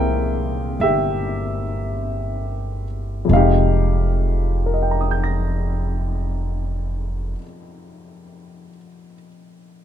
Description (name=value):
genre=jazz ballad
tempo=44-55 BPM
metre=4/4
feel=swing 68% on 8ths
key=F minor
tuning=A4 = 439 Hz
part: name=warm baby grand piano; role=accompaniment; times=0.0-9.8 s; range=F2 to Bb6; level=-22 LUFS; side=left 2 dB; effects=none
part: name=upright bass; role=bass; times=0.0-7.3 s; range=F1 to C2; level=-22 LUFS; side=right 1 dB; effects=none
room=little or no reverb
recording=close, detailed microphones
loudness=-19 LUFS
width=side -10 dB against mid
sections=0.0-3.3 A section; 3.3-8.8 B section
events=slowing down 0.0-3.3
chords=0.0 C7; 3.3 Fm7